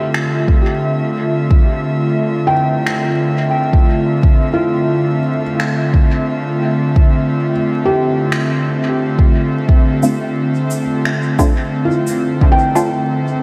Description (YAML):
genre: ambient dub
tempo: 88 BPM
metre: 4/4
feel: swing 53% on 16ths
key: D minor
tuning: A4 = 435 Hz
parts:
  - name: airy breathy pad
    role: sustained chords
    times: 0.0-13.4 s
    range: D3 to E5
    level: -19 LUFS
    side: equal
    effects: chorus
  - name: felt-muted upright piano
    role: arpeggios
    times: 0.0-13.4 s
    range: F4 to G5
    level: -23 LUFS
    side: equal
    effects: dub echo
  - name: finger snaps and cabasa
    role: drums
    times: 0.1-12.9 s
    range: none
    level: -27 LUFS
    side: equal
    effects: dub echo
  - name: electronic kick drum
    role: drums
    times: 0.5-12.6 s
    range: none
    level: -14 LUFS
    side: equal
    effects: overdrive
  - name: filtered dub chord stab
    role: stabs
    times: 10.0-12.9 s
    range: A3 to F4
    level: -22 LUFS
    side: equal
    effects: phaser, dub echo
room: light reverb, small room ambience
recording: echo-heavy mix, vinyl crackle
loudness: -15 LUFS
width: mono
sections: 0.0-13.4 A section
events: none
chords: 0.0 Dm7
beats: 0.14 0.82 | 1.50 2.19 2.87 3.55 | 4.23 4.91 5.60 6.28 | 6.96 7.64 8.32 9.01 | 9.69 10.37 11.05 11.73 | 12.41 13.10